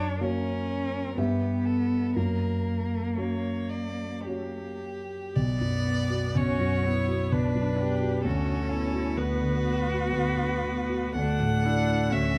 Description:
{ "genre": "classical, slow romantic movement for piano quartet", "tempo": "52-65 BPM", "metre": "3/4", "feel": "rubato", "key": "B minor", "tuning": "A4 = 440 Hz", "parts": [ { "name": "rich violin", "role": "melody", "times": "0.0-12.4 s", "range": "G4 to F#5", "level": "-36 LUFS", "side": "equal", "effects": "none" }, { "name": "rich cello", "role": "second line", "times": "0.0-12.4 s", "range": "A#3 to G4", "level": "-34 LUFS", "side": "equal", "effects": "none" }, { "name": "dark concert grand piano", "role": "accompaniment", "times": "0.0-12.4 s", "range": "B1 to E5", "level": "-30 LUFS", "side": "equal", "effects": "none" }, { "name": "rich viola", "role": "accompaniment", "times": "5.4-12.4 s", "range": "A3 to D4", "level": "-35 LUFS", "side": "equal", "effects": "none" } ], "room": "moderate recital hall reverb, RT60 1.4 s", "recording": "close, detailed microphones", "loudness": "-28 LUFS", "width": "mono", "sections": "0.0-5.4 A section; 5.4-12.4 A section", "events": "none", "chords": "0.0 F#; 1.2 G6; 2.2 F#; 5.4 Bm; 8.3 Bm/D; 11.2 D", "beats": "0.22 1.18 | 2.16 3.17 4.26 | 5.36 6.36 7.33 | 8.25 9.18 10.13 | 11.15 12.11" }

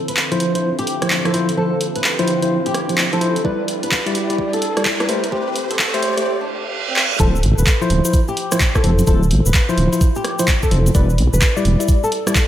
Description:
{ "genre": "UK garage, two-step garage", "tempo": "128 BPM", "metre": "4/4", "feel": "swing 64% on 16ths", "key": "D dorian", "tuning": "A4 = 440 Hz", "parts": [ { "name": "soft string machine", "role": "sustained chords", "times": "0.0-6.2 s", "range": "A2 to B4", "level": "-29 LUFS", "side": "equal", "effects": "phaser, ensemble chorus, sidechain pumping" }, { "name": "riser and reverse cymbal", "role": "sound effects", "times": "1.8-7.2 s", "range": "none", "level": "-27 LUFS", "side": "right 4 dB", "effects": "none" }, { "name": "flamenco guitar", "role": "melody", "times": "0.1-12.2 s", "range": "C4 to B4", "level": "-25 LUFS", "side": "left 2 dB", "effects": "analog chorus, tape echo" }, { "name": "punchy analog drum machine", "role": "drums", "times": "0.1-12.5 s", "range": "handclaps, hi-hat, rim click", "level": "-21 LUFS", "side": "equal", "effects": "overdrive" }, { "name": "tine electric piano", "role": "stabs", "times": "0.3-12.3 s", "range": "F3 to D5", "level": "-20 LUFS", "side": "equal", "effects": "medium stereo tremolo, low-pass filter, diffuse ambient delay" }, { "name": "electronic kick drum", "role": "drums", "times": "3.4-12.5 s", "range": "none", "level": "-16 LUFS", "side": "equal", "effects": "none" }, { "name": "deep soft wobble bass", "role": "bass", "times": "7.2-11.8 s", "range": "D1 to B1", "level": "-15 LUFS", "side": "equal", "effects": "chorus, sidechain pumping" }, { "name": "cabasa", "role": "percussion", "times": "7.2-12.5 s", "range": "none", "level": "-29 LUFS", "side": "left 3 dB", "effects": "none" } ], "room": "wet lush hall reverb, RT60 1.7 s", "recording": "dreamy mix soaked in reverb, high-pass filter", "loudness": "-15 LUFS", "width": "side -11 dB against mid", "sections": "0.0-7.2 A section; 7.2-12.5 B section", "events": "build-up 0.0-7.2; filter sweep on tine electric piano 0.0-7.2; filter sweep on string machine 0.0-7.2; riser 1.8-6.3; reverse cymbal 6.3-7.2; drum fill 7.0; drop 7.2-12.5", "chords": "0.0 Dm9; 3.4 Em7; 5.1 Am7; 7.2 Dm9; 10.9 Em7", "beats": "0.17 0.64 1.10 | 1.57 2.04 2.51 2.98 | 3.45 3.92 4.39 4.85 | 5.32 5.79 6.26 6.73 | 7.20 7.67 8.14 8.60 | 9.07 9.54 10.01 10.48 | 10.95 11.42 11.89 12.35" }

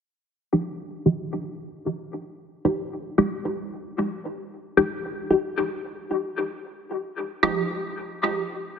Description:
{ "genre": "techno", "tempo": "113 BPM", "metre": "4/4", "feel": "straight", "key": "F minor", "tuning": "A4 = 440 Hz", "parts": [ { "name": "filtered dub chord stab", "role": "stabs", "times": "0.5-8.8 s", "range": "F3 to G4", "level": "-24 LUFS", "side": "equal", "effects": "phaser, dub echo" } ], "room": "wet echo chamber reverb, RT60 2.0 s", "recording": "dense, heavily limited modern master", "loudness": "-24 LUFS", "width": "side -7 dB against mid", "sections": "0.1-8.8 A section", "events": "filter sweep on synth stab 0.1-8.8", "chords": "0.1 Fm9", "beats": "| 0.12 0.65 1.18 1.72 | 2.25 2.78 3.31 3.84 | 4.37 4.90 5.43 5.96 | 6.49 7.02 7.55 8.09 | 8.62" }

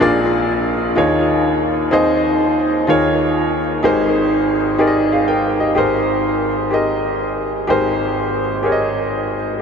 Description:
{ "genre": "gospel", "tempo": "63 BPM (dotted quarters)", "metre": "6/8", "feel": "straight", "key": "Ab major", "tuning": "A4 = 440 Hz", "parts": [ { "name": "clear grand piano", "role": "solo", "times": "0.0-9.6 s", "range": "Ab1 to G5", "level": "-14 LUFS", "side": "equal", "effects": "ping-pong delay" } ], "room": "wet huge ambient reverb, RT60 7.7 s", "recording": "dreamy mix soaked in reverb", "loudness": "-14 LUFS", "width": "side -6 dB against mid", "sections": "0.0-5.8 A section; 5.8-9.6 B section", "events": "none", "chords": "0.0 Bb7; 1.0 Eb9sus4; 1.9 Ab/Eb; 2.9 Eb9sus4; 3.8 Abmaj9", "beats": "| 0.01 0.96 | 1.92 2.88 | 3.83 4.79 | 5.75 6.71 | 7.67 8.64 | 9.60" }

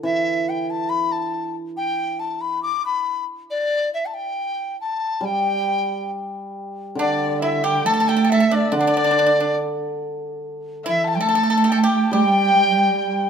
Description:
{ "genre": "chinese traditional, Chinese chamber ensemble", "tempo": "70 BPM", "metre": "2/4", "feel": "rubato", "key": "G gong mode", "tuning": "A4 = 442 Hz", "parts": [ { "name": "large dizi", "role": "melody", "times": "0.0-13.3 s", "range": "D5 to D6", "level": "-21 LUFS", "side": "left 2 dB", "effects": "none" }, { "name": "hammered dulcimer", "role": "accompaniment", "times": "0.0-13.3 s", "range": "D3 to G3", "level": "-24 LUFS", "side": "right 1 dB", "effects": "none" }, { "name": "dark cello", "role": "second line", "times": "7.0-13.3 s", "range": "D3 to A3", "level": "-21 LUFS", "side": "right 4 dB", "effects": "none" }, { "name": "dark erhu", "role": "second line", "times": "7.0-13.3 s", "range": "D5 to A5", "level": "-26 LUFS", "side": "left 8 dB", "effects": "none" }, { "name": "pipa", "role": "second line", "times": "7.0-13.3 s", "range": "D4 to A4", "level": "-26 LUFS", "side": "right 3 dB", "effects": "none" } ], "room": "light reverb", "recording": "close, detailed microphones", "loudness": "-18 LUFS", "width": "side -7 dB against mid", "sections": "0.0-7.0 A section; 7.0-13.3 B section", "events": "none", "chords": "none", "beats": "| 0.05 0.93 | 1.78 2.63 | 3.49 4.35 | 5.21 6.09 | 6.97 7.85 | 8.73 9.59 | 10.43 11.27 | 12.13 12.99" }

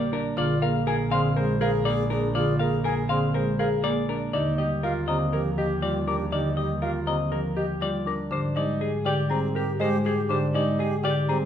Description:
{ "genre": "classical, minimalist pattern music", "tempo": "121 BPM", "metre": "4/4", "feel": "straight", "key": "unclear", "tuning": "A4 = 440 Hz", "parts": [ { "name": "semi-hollow electric guitar", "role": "melody", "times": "0.0-11.5 s", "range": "G4 to F5", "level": "-29 LUFS", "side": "left 8 dB", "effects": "none" }, { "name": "hollow alto flute", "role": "second line", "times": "0.0-11.5 s", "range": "G4 to Ab4", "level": "-33 LUFS", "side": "right 2 dB", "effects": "none" }, { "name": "marimba with medium mallets", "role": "accompaniment", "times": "0.0-11.5 s", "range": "D3 to Bb3", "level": "-27 LUFS", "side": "equal", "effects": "none" }, { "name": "warm grand piano", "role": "arpeggios", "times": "0.0-11.5 s", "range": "C4 to C5", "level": "-31 LUFS", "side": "right 4 dB", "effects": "none" }, { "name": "rich double bass", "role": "bass", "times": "0.0-11.5 s", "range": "Bb1 to Ab2", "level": "-31 LUFS", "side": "right 3 dB", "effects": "none" }, { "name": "mellow wooden flute", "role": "arpeggios", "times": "0.9-11.4 s", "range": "Eb5 to D6", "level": "-33 LUFS", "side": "left 2 dB", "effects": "none" } ], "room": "moderate large studio reverb, RT60 1.4 s", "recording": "none", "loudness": "-23 LUFS", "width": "side -9 dB against mid", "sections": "0.0-8.3 A section; 8.3-11.5 B section", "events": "none", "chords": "0.4 Bb7; 4.3 Ebmaj9; 8.3 Abmaj9", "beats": "| 0.38 0.87 1.37 1.86 | 2.36 2.85 3.35 3.85 | 4.34 4.84 5.33 5.83 | 6.33 6.82 7.32 7.81 | 8.31 8.81 9.30 9.80 | 10.29 10.79 11.29" }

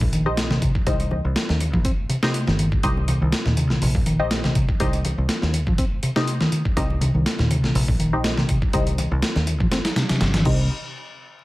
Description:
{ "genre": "breakbeat, breaks", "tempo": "122 BPM", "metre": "4/4", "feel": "swing 54% on 16ths", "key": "C minor", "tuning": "A4 = 441 Hz", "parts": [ { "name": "fingered electric bass", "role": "bass", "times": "0.0-10.7 s", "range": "G1 to Eb2", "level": "-23 LUFS", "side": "equal", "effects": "none" }, { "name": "breakbeat sampler-style drum kit", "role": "drums", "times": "0.0-10.6 s", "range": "crash cymbal, hi-hat, kick drum, snare drum", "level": "-23 LUFS", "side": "equal", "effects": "overdrive" }, { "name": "congas", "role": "percussion", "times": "0.0-10.4 s", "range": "none", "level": "-31 LUFS", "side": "left 1 dB", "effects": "none" }, { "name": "hollow-body short-scale picked electric bass", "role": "riff", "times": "0.1-10.7 s", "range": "Bb2 to C4", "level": "-23 LUFS", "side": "equal", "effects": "overdrive" }, { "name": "filtered dub chord stab", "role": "stabs", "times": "0.3-10.6 s", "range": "Eb4 to Eb5", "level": "-28 LUFS", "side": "left 1 dB", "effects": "phaser, cassette tape, digital delay" } ], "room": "little or no reverb", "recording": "vinyl crackle", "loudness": "-19 LUFS", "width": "side -18 dB against mid", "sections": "0.0-10.7 A section", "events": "drop 0.0-10.7", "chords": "0.0 Cm; 10.7 N.C.", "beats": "0.38 | 0.87 1.36 1.85 2.34 | 2.83 3.33 3.82 4.31 | 4.80 5.29 5.79 6.28 | 6.77 7.26 7.75 8.24 | 8.74 9.23 9.72 10.21" }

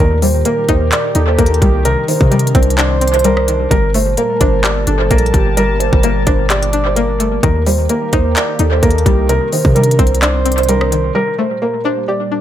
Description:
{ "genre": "hip hop, trap", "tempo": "129 BPM", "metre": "4/4", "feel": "half-time", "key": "G minor", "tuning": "A4 = 440 Hz", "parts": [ { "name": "felt-muted upright piano", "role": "melody", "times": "0.0-12.4 s", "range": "Bb4 to D5", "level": "-18 LUFS", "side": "equal", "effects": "analog delay" }, { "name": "string-like resonator pluck", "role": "accompaniment", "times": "0.0-12.4 s", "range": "C3 to G4", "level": "-20 LUFS", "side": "left 3 dB", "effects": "chorus, analog delay" }, { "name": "sweeping resonant pad", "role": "sustained chords", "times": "0.1-12.4 s", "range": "Bb2 to A5", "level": "-23 LUFS", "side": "right 1 dB", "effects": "chorus" }, { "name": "hard-hitting 808-style bass", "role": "bass", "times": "0.0-11.1 s", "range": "G1 to C3", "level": "-15 LUFS", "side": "equal", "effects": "none" }, { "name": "trap drum kit", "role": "drums", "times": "0.2-11.0 s", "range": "handclaps, hi-hat, kick drum, rim click", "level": "-16 LUFS", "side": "equal", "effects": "analog delay" }, { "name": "breathy flute-like synth lead", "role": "second line", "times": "0.5-11.1 s", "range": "G4 to D5", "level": "-21 LUFS", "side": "right 4 dB", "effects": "chorus, analog delay" } ], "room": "digital ambience", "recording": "echo-heavy mix", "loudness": "-11 LUFS", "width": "side -11 dB against mid", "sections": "0.0-11.2 A section; 11.2-12.4 B section", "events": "none", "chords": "0.0 Eb; 1.9 Cmadd9; 3.7 Gmadd9; 7.4 Eb; 9.3 Cmadd9; 11.2 Gmadd9", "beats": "0.46 0.92 1.39 | 1.85 2.32 2.78 3.25 | 3.71 4.18 4.64 5.11 | 5.57 6.04 6.50 6.97 | 7.43 7.90 8.36 8.83 | 9.29 9.76 10.22 10.69 | 11.15 11.62 12.08" }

